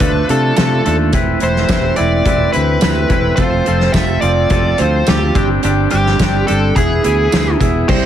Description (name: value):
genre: indie rock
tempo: 106 BPM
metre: 4/4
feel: straight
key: A minor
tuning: A4 = 440 Hz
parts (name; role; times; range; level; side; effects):
- nasal lead guitar with a parked wah; melody; 0.0-8.1 s; G4 to E5; -18 LUFS; equal; overdrive
- overdriven electric guitar; riff; 0.0-8.1 s; C3 to G#4; -19 LUFS; right 8 dB; wide subtle chorus
- twangy electric guitar; riff; 0.0-8.1 s; F3 to B4; -20 LUFS; left 6 dB; none
- fingered electric bass; bass; 0.0-8.1 s; E1 to C3; -17 LUFS; equal; none
- loose indie drum kit; drums; 0.0-8.0 s; crash cymbal, hi-hat, kick drum, snare drum, tambourine; -17 LUFS; equal; none
room: light reverb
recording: heavily compressed radio sound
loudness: -11 LUFS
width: side -10 dB against mid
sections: 0.0-7.9 A section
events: none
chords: 0.0 Dm; 1.1 Amadd9/E; 3.4 F; 5.4 Gsus4; 6.8 E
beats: 0.01 0.57 | 1.14 1.70 2.26 2.83 | 3.39 3.95 4.52 5.08 | 5.64 6.21 6.77 7.33 | 7.89